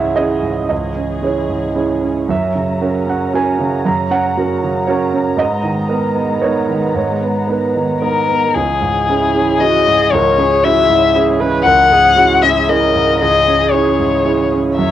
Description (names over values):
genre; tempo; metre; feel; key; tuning
neoclassical piano and strings; 115 BPM; 3/4; rubato; C# dorian; A4 = 438 Hz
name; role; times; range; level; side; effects
clear grand piano; accompaniment; 0.0-14.9 s; C#2 to A#5; -16 LUFS; right 4 dB; cassette tape
muted chamber string section; sustained chords; 0.0-14.9 s; E3 to A#5; -24 LUFS; left 2 dB; cassette tape
muted violin; melody; 8.0-14.9 s; G#4 to F#5; -12 LUFS; left 5 dB; cassette tape
muted viola; accompaniment; 9.1-14.9 s; E4 to C#5; -20 LUFS; right 4 dB; cassette tape
room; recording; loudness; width
light reverb; home recording on cassette; -12 LUFS; side -11 dB against mid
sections
0.0-8.6 A section; 8.6-14.9 A section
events
none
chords
0.0 C#m; 2.3 F#; 5.4 G#madd9; 8.6 C#m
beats
0.18 | 0.71 1.23 1.76 | 2.29 2.82 3.34 | 3.86 4.37 4.88 | 5.39 5.90 6.42 | 6.96 7.49 8.02 | 8.56 9.09 9.61 | 10.13 10.64 11.15 | 11.65 12.17 12.68 | 13.20 13.72 14.25 | 14.79